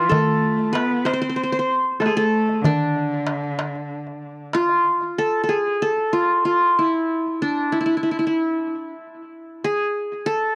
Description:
Arabic maqam ensemble; 95 BPM; 4/4; straight; D maqam nikriz; A4 = 438 Hz
qanun; melody; 0.0-10.6 s; D4 to C5; -22 LUFS; equal; tape echo
rich cello; second line; 0.0-4.5 s; D3 to C4; -27 LUFS; equal
darbuka; percussion; 0.1-5.1 s; -26 LUFS; equal
moderate studio reverb, RT60 0.5 s; worn, warbling old tape, cassette tape, warbly pitch drift; -21 LUFS; mono
0.0-5.2 A section; 5.2-10.6 B section

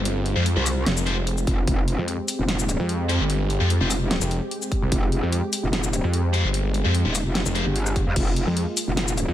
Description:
heavy wobble dubstep; 148 BPM; 4/4; half-time; F minor; A4 = 439 Hz
supersaw pad; sustained chords; 0.0-9.3 s; Ab3 to G4; -30 LUFS; right 1 dB; sidechain pumping, low-pass filter
snarling distorted saw bass; bass; 0.0-9.3 s; F1 to F2; -22 LUFS; equal; overdrive
big-room dance drum kit; drums; 0.1-9.3 s; crash cymbal, hi-hat, shaker, snare drum; -28 LUFS; left 2 dB; studio reverb
sludgy distorted guitar; stabs; 0.4-3.9, 6.3-7.6 s; Ab3 to C5; -29 LUFS; left 2 dB; overdrive, ping-pong delay
metallic wobble bass; bass; 0.6-9.3 s; Eb1 to F2; -24 LUFS; equal; chorus, overdrive
electronic kick drum; drums; 1.5-1.8, 4.7-5.0, 8.0-8.2 s; -24 LUFS; equal; studio reverb
little or no reverb; -20 LUFS; side -12 dB against mid
0.0-9.3 A section
0.0 Fm

